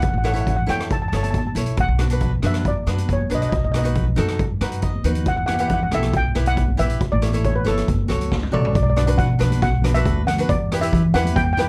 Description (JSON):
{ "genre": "calypso", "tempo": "138 BPM", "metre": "4/4", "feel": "straight", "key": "B minor", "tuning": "A4 = 441 Hz", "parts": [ { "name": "steel pan", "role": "melody", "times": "0.0-11.7 s", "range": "A4 to A5", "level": "-27 LUFS", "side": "equal", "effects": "none" }, { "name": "cavaquinho", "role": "accompaniment", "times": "0.0-11.6 s", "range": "D4 to F#5", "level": "-29 LUFS", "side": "equal", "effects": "none" }, { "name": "upright bass", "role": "bass", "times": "0.0-11.7 s", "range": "F#1 to E3", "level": "-24 LUFS", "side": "equal", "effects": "none" }, { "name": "street-band drum kit", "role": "drums", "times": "0.0-11.7 s", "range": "hi-hat, kick drum, rim click, snare drum, toms", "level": "-26 LUFS", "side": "equal", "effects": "none" }, { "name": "congas", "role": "percussion", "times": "0.5-11.7 s", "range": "none", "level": "-31 LUFS", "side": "equal", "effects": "none" } ], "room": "little or no reverb", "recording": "dark, warm production", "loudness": "-20 LUFS", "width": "mono", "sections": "0.0-8.8 A section; 8.8-11.7 B section", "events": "cavaquinho fill 4.4-5.3; drum fill 8.3-8.8", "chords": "0.0 A; 1.8 Bm; 3.5 B7; 5.3 Em; 7.0 A; 7.9 F#m; 8.8 Bm; 10.5 Em" }